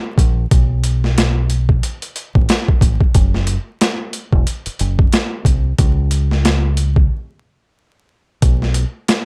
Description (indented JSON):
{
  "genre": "hip hop, boom-bap hip-hop",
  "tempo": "91 BPM",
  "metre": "4/4",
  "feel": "swing 57% on 16ths",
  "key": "unclear",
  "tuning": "A4 = 439 Hz",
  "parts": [
    { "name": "deep dub fingered electric bass", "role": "bass", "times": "0.2-8.8 s", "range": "E1 to C#2", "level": "-19 LUFS", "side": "equal", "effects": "none" },
    { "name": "boom bap sampler-style drum kit", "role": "drums", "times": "0.2-9.2 s", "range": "hi-hat, kick drum, snare drum", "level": "-17 LUFS", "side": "equal", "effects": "overdrive" }
  ],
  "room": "little or no reverb",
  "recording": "vinyl crackle",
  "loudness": "-16 LUFS",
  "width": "mono",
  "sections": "0.0-9.2 A section",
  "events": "break 7.1-8.4",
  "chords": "none"
}